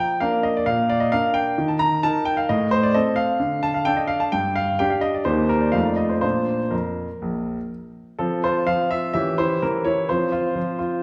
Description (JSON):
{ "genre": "classical-period piano sonatina", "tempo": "121-132 BPM", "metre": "4/4", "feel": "rubato", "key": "Bb major", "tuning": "A4 = 439 Hz", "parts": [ { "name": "clear baby grand piano", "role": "solo", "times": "0.0-11.0 s", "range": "Bb1 to Bb5", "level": "-22 LUFS", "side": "equal", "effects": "none" } ], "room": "wet recital hall reverb, RT60 1.5 s", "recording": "heard from further back in the room", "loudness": "-22 LUFS", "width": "mono", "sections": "0.0-8.2 A section; 8.2-11.0 B section", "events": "none", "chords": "0.0 Bb; 1.6 Eb5; 2.5 Adim; 3.4 D5; 4.3 G5; 5.3 Eb; 5.8 F7; 6.2 Bb; 8.2 F5; 9.2 Edim7; 10.1 F5" }